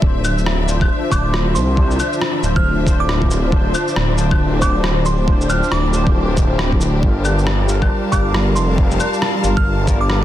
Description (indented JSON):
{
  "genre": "future garage",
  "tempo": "137 BPM",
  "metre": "4/4",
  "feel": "swing 61% on 16ths",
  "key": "D minor",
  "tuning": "A4 = 440 Hz",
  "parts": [
    { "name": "barky tine electric piano", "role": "accompaniment", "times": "0.0-10.2 s", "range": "F3 to C5", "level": "-23 LUFS", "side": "left 3 dB", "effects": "overdrive, ensemble chorus, sidechain pumping, tape echo" },
    { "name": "rich symphonic string section", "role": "sustained chords", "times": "0.0-10.2 s", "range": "D3 to A5", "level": "-25 LUFS", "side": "equal", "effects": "sidechain pumping" },
    { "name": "swelling detuned saw bass", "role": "bass", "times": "0.0-10.2 s", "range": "D1 to C2", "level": "-18 LUFS", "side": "equal", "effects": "none" },
    { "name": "electronic kick drum", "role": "drums", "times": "0.0-10.0 s", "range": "none", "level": "-17 LUFS", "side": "equal", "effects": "overdrive" },
    { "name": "electronic cabasa, shaker, claves and rim click", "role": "drums", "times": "0.2-10.2 s", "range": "none", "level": "-23 LUFS", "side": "equal", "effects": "soft clipping on snare" },
    { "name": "glassy synth bell", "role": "melody", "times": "1.1-10.2 s", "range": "C6 to F6", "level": "-25 LUFS", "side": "right 4 dB", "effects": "chorus, analog delay" }
  ],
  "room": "little or no reverb",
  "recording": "dense, heavily limited modern master",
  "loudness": "-14 LUFS",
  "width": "side -12 dB against mid",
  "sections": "0.0-10.2 A section",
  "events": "none",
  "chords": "0.0 Dm7; 7.0 Gm7",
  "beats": "| 0.02 0.46 0.90 1.34 | 1.77 2.21 2.65 3.09 | 3.53 3.96 4.40 4.84 | 5.28 5.72 6.15 6.59 | 7.03 7.47 7.91 8.34 | 8.78 9.22 9.66 10.10"
}